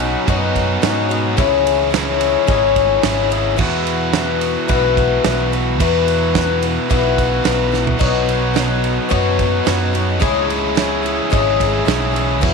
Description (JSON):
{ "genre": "folk rock and heartland rock", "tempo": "109 BPM", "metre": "4/4", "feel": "straight", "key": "E major", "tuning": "A4 = 440 Hz", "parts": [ { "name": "picked twelve-string acoustic guitar", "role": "accompaniment", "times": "0.0-12.5 s", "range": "E2 to C#5", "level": "-18 LUFS", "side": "left 12 dB", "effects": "none" }, { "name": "hand-pumped harmonium", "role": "sustained chords", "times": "0.0-12.5 s", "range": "C#4 to C#5", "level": "-26 LUFS", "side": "right 3 dB", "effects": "none" }, { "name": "biting overdriven guitar", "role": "riff", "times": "0.0-12.5 s", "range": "E2 to F#4", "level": "-21 LUFS", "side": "right 1 dB", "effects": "none" }, { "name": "picked electric bass", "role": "bass", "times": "0.0-12.5 s", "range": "G#1 to G#2", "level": "-21 LUFS", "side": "right 1 dB", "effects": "none" }, { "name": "natural country drum kit", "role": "drums", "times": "0.0-12.5 s", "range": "crash cymbal, kick drum, ride cymbal, snare drum, toms", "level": "-21 LUFS", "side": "right 6 dB", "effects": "none" } ], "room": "light reverb, small room ambience", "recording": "1960s-style stereo with parts hard left and right", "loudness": "-14 LUFS", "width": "side -4 dB against mid", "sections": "0.0-12.5 A section", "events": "drum fill 7.7", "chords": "0.0 Badd9; 1.4 C#m; 3.6 Esus2; 8.0 Badd9; 10.2 C#m" }